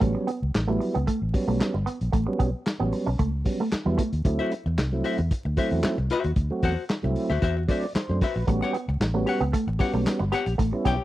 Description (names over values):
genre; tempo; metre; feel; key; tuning
funk; 114 BPM; 4/4; straight; unclear; A4 = 440 Hz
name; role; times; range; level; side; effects
electric guitar with an envelope filter; riff; 0.0-4.1, 8.5-11.0 s; G3 to C#4; -29 LUFS; right 3 dB; none
mellow tonewheel organ; stabs; 0.0-11.0 s; F#3 to D5; -28 LUFS; right 2 dB; overdrive, chorus vibrato, slow rotary speaker
vintage muted fingered electric bass; bass; 0.0-11.0 s; G1 to F#2; -26 LUFS; equal; none
vintage drum kit; drums; 0.0-11.0 s; handclaps, hi-hat, kick drum, snare drum; -26 LUFS; equal; none
archtop guitar, miked and amplified; accompaniment; 4.2-11.0 s; F#4 to G5; -29 LUFS; left 5 dB; none
room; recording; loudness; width
studio reverb; dry, close 1970s-style studio recording, vinyl crackle; -23 LUFS; side -15 dB against mid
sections
0.0-11.0 A section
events
break 0.0-4.2; tonewheel organ fill 7.4-8.5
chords
0.0 A13; 4.2 D9; 8.5 A13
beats
| 0.02 0.55 1.07 1.60 | 2.13 2.66 3.19 3.72 | 4.25 4.78 5.30 5.83 | 6.36 6.89 7.42 7.95 | 8.48 9.01 9.54 10.06 | 10.59